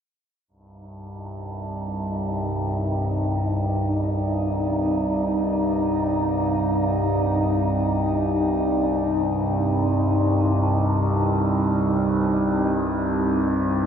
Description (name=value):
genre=dark ambient drone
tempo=free time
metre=none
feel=none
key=C minor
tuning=A4 = 440 Hz
part: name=deep dark ambient pad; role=sustained chords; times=2.2-13.9 s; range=C4 to D5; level=-25 LUFS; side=equal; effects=chorus, built-in reverb, shimmer reverb
part: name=overtone-sweeping drone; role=drone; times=0.9-13.9 s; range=C2 to G2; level=-23 LUFS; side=equal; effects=chorus, built-in reverb
part: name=wind-like tuned noise texture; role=texture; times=1.3-13.9 s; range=Eb4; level=-29 LUFS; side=right 1 dB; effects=built-in reverb, shimmer reverb
room=wet huge ambient reverb, RT60 8.0 s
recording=dark, warm production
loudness=-20 LUFS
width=side -8 dB against mid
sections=0.5-13.9 A section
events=none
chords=0.5 Cmadd9